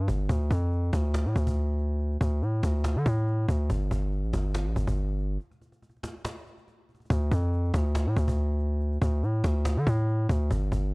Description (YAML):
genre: hip hop, trap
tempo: 141 BPM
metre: 4/4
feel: half-time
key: D minor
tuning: A4 = 440 Hz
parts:
  - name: distorted 808-style bass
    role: bass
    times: 0.0-10.9 s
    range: G1 to D3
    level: -25 LUFS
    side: equal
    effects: distortion
  - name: cajon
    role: drums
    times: 0.1-10.9 s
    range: none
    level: -34 LUFS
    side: equal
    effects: none
room: little or no reverb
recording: dry, gritty hardware recording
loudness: -25 LUFS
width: side -34 dB against mid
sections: 0.0-7.1 A section; 7.1-10.9 B section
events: break 5.4-7.1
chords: none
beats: | 0.29 0.72 1.14 1.57 | 2.00 2.42 2.85 3.27 | 3.70 4.12 4.55 4.97 | 5.40 5.83 6.25 6.68 | 7.10 7.53 7.95 8.38 | 8.80 9.23 9.65 10.08 | 10.51 10.93